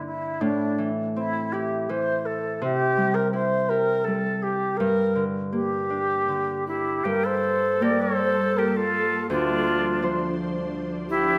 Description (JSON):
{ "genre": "celtic folk, Celtic slow air", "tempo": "82 BPM", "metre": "3/4", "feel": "rubato", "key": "G dorian", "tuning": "A4 = 439 Hz", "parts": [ { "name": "baroque flute", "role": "melody", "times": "0.0-11.4 s", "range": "D4 to D5", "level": "-27 LUFS", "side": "equal", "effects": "none" }, { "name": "Celtic harp", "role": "accompaniment", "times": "0.0-11.4 s", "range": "D2 to C5", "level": "-30 LUFS", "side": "equal", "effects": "none" }, { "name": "breathy bright jazz flute", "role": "second line", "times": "6.7-11.4 s", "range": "D4 to Bb4", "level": "-29 LUFS", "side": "equal", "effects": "none" }, { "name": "ethereal airy pad", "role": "sustained chords", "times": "7.8-11.4 s", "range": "F3 to C5", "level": "-32 LUFS", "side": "equal", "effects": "ensemble chorus, built-in reverb" } ], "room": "moderate concert hall reverb, RT60 1.9 s", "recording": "none", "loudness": "-24 LUFS", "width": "mono", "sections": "0.0-7.1 A section; 7.1-11.4 B section", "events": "none", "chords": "0.4 Am; 2.6 C; 4.8 Gm; 7.1 Gmadd9; 9.3 Dm7" }